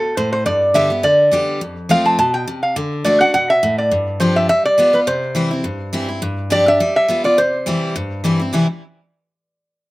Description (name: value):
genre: bluegrass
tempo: 208 BPM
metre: 4/4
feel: swing 54% on 8ths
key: C major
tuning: A4 = 440 Hz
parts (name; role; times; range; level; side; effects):
- lap resonator guitar; melody; 0.0-8.2 s; A4 to A5; -15 LUFS; equal; none
- picked steel-string acoustic guitar; accompaniment; 0.0-8.7 s; F2 to G4; -20 LUFS; left 1 dB; none
room: little or no reverb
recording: recorded outdoors, with no room sound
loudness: -14 LUFS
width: side -19 dB against mid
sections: 0.0-6.2 A section; 6.2-8.5 B section; 8.5-9.7 C section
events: none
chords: 0.5 G; 1.6 F; 2.8 D; 3.9 G7sus4; 4.5 G7; 5.1 C; 6.2 G7sus4; 6.8 G7; 7.4 C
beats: 0.17 | 0.46 0.75 1.03 1.32 | 1.61 1.90 2.19 2.48 | 2.76 3.05 3.34 3.63 | 3.92 4.20 4.49 4.78 | 5.07 5.36 5.64 5.93 | 6.22 6.51 6.80 7.09 | 7.38 7.67 7.95 8.24 | 8.53